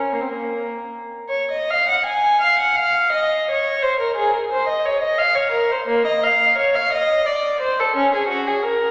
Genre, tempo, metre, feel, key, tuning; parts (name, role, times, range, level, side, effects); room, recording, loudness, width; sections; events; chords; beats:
classical, baroque-style suite movement for unaccompanied violin; 86 BPM; 3/4; uneven beats, rubato; Db major; A4 = 440 Hz
dark violin; solo; 0.0-8.9 s; Bb3 to Ab5; -19 LUFS; equal
wet church reverb, RT60 2.5 s; -19 LUFS; mono
0.0-1.7 A section; 1.7-8.9 A section
0.14 0.91 | 1.68 2.40 3.11 | 3.81 4.50 5.19 | 5.90 6.61 7.30 | 7.97 8.65